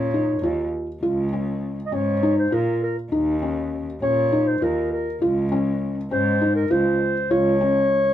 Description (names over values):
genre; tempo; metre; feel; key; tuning
contemporary instrumental, chamber music in an uneven meter; 201 BPM (eighths); 7/8; straight; Db major; A4 = 436 Hz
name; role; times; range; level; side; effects
dark clarinet; melody; 0.0-8.1 s; Bb4 to Eb5; -22 LUFS; left 1 dB; none
felt-muted upright piano; arpeggios; 0.0-8.0 s; Db4 to F4; -23 LUFS; equal; none
dark cello; bass; 0.0-8.1 s; Db2 to Bb2; -26 LUFS; right 1 dB; none
room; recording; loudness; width
light reverb; minimal, uncompressed stereo recording; -19 LUFS; side -11 dB against mid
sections
0.0-8.1 A section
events
none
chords
0.0 Eb5; 1.0 Db6; 3.1 Eb5; 5.2 Db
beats
0.14 0.43 0.73 | 1.03 1.33 1.63 1.93 2.23 2.53 2.83 | 3.13 3.42 3.72 4.02 4.32 4.62 4.92 | 5.22 5.52 5.82 6.12 6.42 6.72 7.01 | 7.31 7.61 7.91